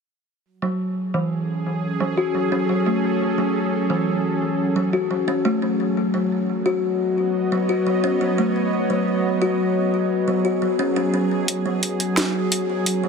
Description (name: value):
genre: half-time drum and bass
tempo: 174 BPM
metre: 4/4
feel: half-time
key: F# dorian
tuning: A4 = 440 Hz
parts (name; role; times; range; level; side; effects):
- bowed-like drone; sustained chords; 0.9-13.1 s; F#3 to D#5; -23 LUFS; right 3 dB; built-in reverb
- kalimba; arpeggios; 0.6-13.1 s; E3 to F#4; -22 LUFS; left 3 dB; vintage 12-bit sampler grit, low-pass filter, ping-pong delay
- drum and bass drum kit; drums; 11.5-12.9 s; hi-hat, snare drum; -23 LUFS; right 1 dB; none
room: light reverb, digital ambience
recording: dense, heavily limited modern master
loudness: -19 LUFS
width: side -5 dB against mid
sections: 0.5-13.1 A section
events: none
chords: 0.5 F#m; 6.0 B/F#